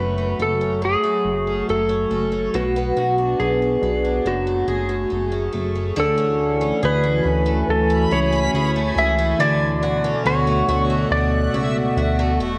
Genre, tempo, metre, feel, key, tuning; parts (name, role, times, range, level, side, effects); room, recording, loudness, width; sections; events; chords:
dream pop; 70 BPM; 4/4; straight; A4 = 440 Hz
clean lap steel guitar; melody; 0.0-12.4 s; F#4 to E5; -24 LUFS; equal; analog delay
warbly tape-like pad; sustained chords; 0.0-12.6 s; B2 to G#5; -27 LUFS; equal; chorus, built-in reverb, cassette tape
picked twelve-string acoustic guitar; arpeggios; 0.0-12.6 s; F#2 to G#4; -28 LUFS; equal; lush chorus, cassette tape, analog delay
chorused synth bass; bass; 0.0-12.6 s; E1 to D2; -26 LUFS; equal
backwards swelling texture; texture; 6.8-11.6 s; E5 to B5; -33 LUFS; equal; built-in reverb, cassette tape, analog delay
moderate spring reverb, RT60 1.1 s; home recording on cassette; -20 LUFS; mono
0.0-6.0 A section; 6.0-12.6 B section
0.0 F#madd9; 2.5 Bm; 4.3 F#madd9; 6.0 Dmaj9#11; 9.4 Bm9